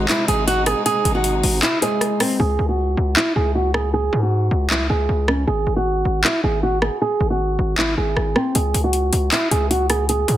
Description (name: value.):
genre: hip hop, trap.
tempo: 156 BPM.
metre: 4/4.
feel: half-time.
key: C# harmonic minor.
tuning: A4 = 440 Hz.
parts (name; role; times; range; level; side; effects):
nylon-string guitar; melody; 0.0-10.4 s; B#3 to G#4; -20 LUFS; right 2 dB; low-pass filter.
dark grand piano; accompaniment; 0.0-2.4 s; G#3 to D#5; -27 LUFS; left 3 dB; low-pass filter.
rich symphonic string section; sustained chords; 0.0-2.4 s; B#2 to D#4; -29 LUFS; equal; none.
distorted 808-style bass; bass; 0.0-10.4 s; G#1 to G#2; -21 LUFS; equal; distortion.
trap drum kit; drums; 0.1-10.4 s; handclaps, hi-hat, rim click; -21 LUFS; left 1 dB; overdrive.
room: light reverb, studio ambience.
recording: dense, heavily limited modern master.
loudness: -17 LUFS.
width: side -12 dB against mid.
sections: 0.0-2.4 A section; 2.4-10.4 B section.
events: kick muted 1.6-2.4; hi-hats muted 2.4-8.6.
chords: 0.0 G#; 2.4 C#5; 5.5 G#7(no3); 8.6 C#5.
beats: 0.09 0.47 | 0.86 1.24 1.63 2.01 | 2.40 2.78 3.17 3.55 | 3.94 4.32 4.71 5.09 | 5.47 5.86 6.24 6.63 | 7.01 7.40 7.78 8.17 | 8.55 8.94 9.32 9.71 | 10.09.